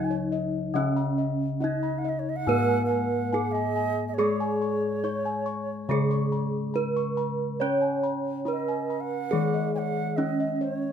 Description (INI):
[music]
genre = Javanese gamelan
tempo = 70 BPM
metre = 4/4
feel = straight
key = Db slendro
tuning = A4 = 440 Hz
[part]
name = gamelan-type bronze metallophone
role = melody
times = 0.0-10.9 s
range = Db4 to Db5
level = -29 LUFS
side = right 2 dB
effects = none
[part]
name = bright xiao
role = second line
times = 0.0-10.9 s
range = Db5 to Ab5+28c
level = -33 LUFS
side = right 8 dB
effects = none
[part]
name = gamelan-type bronze metallophone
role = accompaniment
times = 0.0-10.9 s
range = Db3 to Db4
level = -31 LUFS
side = left 2 dB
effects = none
[part]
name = gamelan-type bossed gongs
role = arpeggios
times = 0.0-10.9 s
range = Db5 to Db6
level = -34 LUFS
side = left 4 dB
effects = none
[part]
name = gamelan-type bossed gongs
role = bass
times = 0.0-10.9 s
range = Ab2+25c to Db5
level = -31 LUFS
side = left 1 dB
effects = none
[sound]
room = moderate small room reverb, RT60 0.5 s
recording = minimal, uncompressed stereo recording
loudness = -24 LUFS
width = side -8 dB against mid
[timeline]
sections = 0.0-10.9 A section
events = none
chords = none